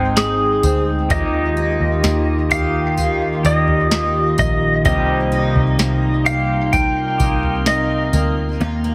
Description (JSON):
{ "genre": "dream pop", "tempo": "64 BPM", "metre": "4/4", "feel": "straight", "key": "unclear", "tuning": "A4 = 438 Hz", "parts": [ { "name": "clean lap steel guitar", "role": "melody", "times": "0.0-8.9 s", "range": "Bb3 to G5", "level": "-22 LUFS", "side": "equal", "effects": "tape echo" }, { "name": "clean electric guitar", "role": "accompaniment", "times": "0.0-8.9 s", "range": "C3 to Ab4", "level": "-29 LUFS", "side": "equal", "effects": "harmonic tremolo, lush chorus" }, { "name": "warbly tape-like pad", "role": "sustained chords", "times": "0.0-8.9 s", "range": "C3 to F5", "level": "-24 LUFS", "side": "equal", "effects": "chorus, built-in reverb" }, { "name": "picked twelve-string acoustic guitar", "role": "arpeggios", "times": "0.0-8.9 s", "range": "Ab2 to Ab4", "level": "-28 LUFS", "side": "equal", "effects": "subtle chorus, tape echo" }, { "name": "vintage muted picked electric bass", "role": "bass", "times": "0.0-8.9 s", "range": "Ab1 to Eb2", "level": "-24 LUFS", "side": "equal", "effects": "none" }, { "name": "booming analog drum machine", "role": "drums", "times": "0.2-8.3 s", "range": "kick drum, snare drum, tambourine, toms", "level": "-24 LUFS", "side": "equal", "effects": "none" }, { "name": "drifting glass-harmonics texture", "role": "texture", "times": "6.2-8.9 s", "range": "F4 to Bb4", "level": "-32 LUFS", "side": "equal", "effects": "chorus, built-in reverb, tape echo" } ], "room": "moderate plate reverb, RT60 2.0 s", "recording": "heavily compressed radio sound, multiband compression", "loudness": "-17 LUFS", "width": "mono", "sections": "0.0-8.6 A section", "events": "none", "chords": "0.0 Ab; 1.1 Ebadd9; 4.9 Cm7", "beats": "0.17 | 1.10 2.04 2.98 3.92 | 4.85 5.79 6.73 7.67 | 8.60" }